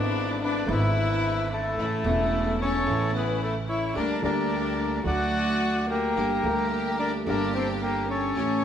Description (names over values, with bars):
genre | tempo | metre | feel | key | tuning
tango | 109 BPM | 4/4 | rubato | unclear | A4 = 440 Hz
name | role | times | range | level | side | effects
bandoneon | melody | 0.0-8.6 s | E4 to F#5 | -28 LUFS | equal | none
warm violin | second line | 0.0-8.6 s | A3 to F#4 | -30 LUFS | left 4 dB | none
warm concert grand piano | accompaniment | 0.0-8.6 s | E1 to G4 | -29 LUFS | right 2 dB | none
clear symphonic string section | stabs | 0.0-8.6 s | G#3 to G4 | -35 LUFS | right 2 dB | none
upright bass | bass | 0.0-8.6 s | E1 to D2 | -32 LUFS | right 1 dB | none
room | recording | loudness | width
wet large studio reverb, RT60 1.0 s | band playing live in one room | -23 LUFS | side -9 dB against mid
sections
0.0-8.6 A section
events
none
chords
0.0 E7/G#; 1.8 A; 4.0 Gm/D; 5.1 D; 6.2 Gm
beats
0.14 0.68 1.23 | 1.78 2.32 2.87 3.41 | 3.96 4.51 5.06 5.61 | 6.17 6.72 7.27 7.82 | 8.36